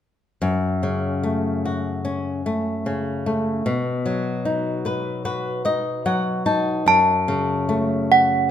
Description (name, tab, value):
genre	children's music, lullaby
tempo	74 BPM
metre	4/4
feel	straight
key	F# dorian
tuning	A4 = 442 Hz
part	flamenco guitar	accompaniment	0.4-8.5 s	F#2 to A5	-21 LUFS	left 2 dB	none
part	desk bells	melody	6.9-8.5 s	F#5 to A5	-16 LUFS	right 2 dB	none
room	moderate recital hall reverb, RT60 1.3 s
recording	minimal, uncompressed stereo recording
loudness	-20 LUFS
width	side -9 dB against mid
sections	0.4-6.9 A section; 6.9-8.5 B section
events	nylon-string guitar fill 4.5-6.9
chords	0.4 F#m; 3.7 B; 6.9 F#m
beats	| 0.43 1.25 2.06 2.86 | 3.66 4.45 5.25 6.06 | 6.88 7.70